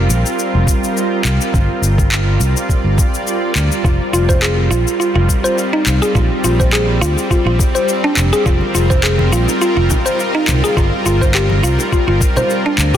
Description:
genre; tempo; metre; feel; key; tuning
organic downtempo; 104 BPM; 4/4; swing 54% on 16ths; unclear; A4 = 438 Hz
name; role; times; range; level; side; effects
bowed-like drone; sustained chords; 0.0-13.0 s; G3 to Eb5; -19 LUFS; right 1 dB; built-in reverb, sidechain pumping
fretless electric bass; bass; 0.0-12.9 s; F1 to D2; -15 LUFS; equal; sidechain pumping
electronic shaker and handclaps; drums; 0.1-13.0 s; none; -21 LUFS; left 2 dB; studio ambience
electronic kick drum; drums; 0.7-12.3 s; none; -15 LUFS; equal; studio ambience
mallet-like synth pluck; arpeggios; 3.8-13.0 s; D4 to C5; -17 LUFS; equal; chorus, cassette tape, tape echo
congas and bongos; percussion; 8.6-13.0 s; none; -24 LUFS; equal; none
room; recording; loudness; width
light reverb; dense, heavily limited modern master; -12 LUFS; side -10 dB against mid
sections
0.0-13.0 A section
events
none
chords
0.0 F5; 1.5 Gm7; 3.8 Fm7; 6.2 Bb13; 8.5 Fm7; 10.8 Gm7

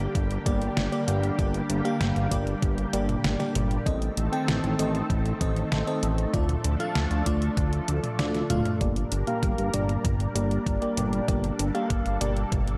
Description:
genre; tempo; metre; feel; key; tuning
synthwave; 97 BPM; 4/4; straight; G minor; A4 = 439 Hz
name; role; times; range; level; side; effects
analog string pad; sustained chords; 0.0-12.8 s; D3 to Bb4; -34 LUFS; equal; ensemble chorus, sidechain pumping
FM electric piano with soft pad layer; stabs; 0.0-12.4 s; A3 to G5; -33 LUFS; equal; chorus, low-pass filter, delay
fat analog bass; bass; 0.0-12.8 s; D1 to D2; -30 LUFS; equal; none
detuned 8-bit digital drum machine; drums; 0.0-12.8 s; hi-hat, snare drum, toms; -34 LUFS; equal; overdrive
electronic kick drum; drums; 0.1-12.6 s; none; -30 LUFS; equal; overdrive
room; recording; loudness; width
light reverb, digital ambience; dark, warm production; -26 LUFS; mono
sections
0.0-8.8 A section; 8.8-12.8 B section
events
drum fill 8.3-8.8, 8.8-12.8; filter sweep on FM electric piano 8.8-12.8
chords
0.0 Gm; 3.9 Adim; 6.3 Dm; 8.8 Gm

